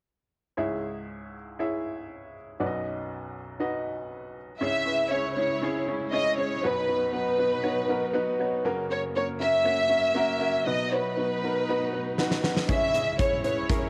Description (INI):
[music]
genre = piano-driven pop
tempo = 119 BPM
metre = 4/4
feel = straight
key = B major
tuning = A4 = 440 Hz
[part]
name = clear upright piano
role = accompaniment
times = 0.6-13.9 s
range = B1 to E5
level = -32 LUFS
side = equal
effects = cassette tape
[part]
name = dark studio violin section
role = melody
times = 4.6-13.9 s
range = B4 to E5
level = -29 LUFS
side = equal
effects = cassette tape
[part]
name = rich studio string section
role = sustained chords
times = 4.6-13.9 s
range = F#2 to E4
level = -39 LUFS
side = equal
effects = cassette tape
[part]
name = huge arena drum kit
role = drums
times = 12.2-13.8 s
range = hi-hat, kick drum, snare drum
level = -30 LUFS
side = equal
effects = cassette tape
[sound]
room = moderate spring reverb, RT60 2.5 s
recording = home recording on cassette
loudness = -27 LUFS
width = mono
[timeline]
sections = 0.6-4.6 A section; 4.6-13.9 B section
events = drum fill 12.2-12.7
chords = 0.6 C#m; 2.6 B; 4.6 C#m; 6.6 B; 8.6 F#; 10.7 B; 12.7 C#m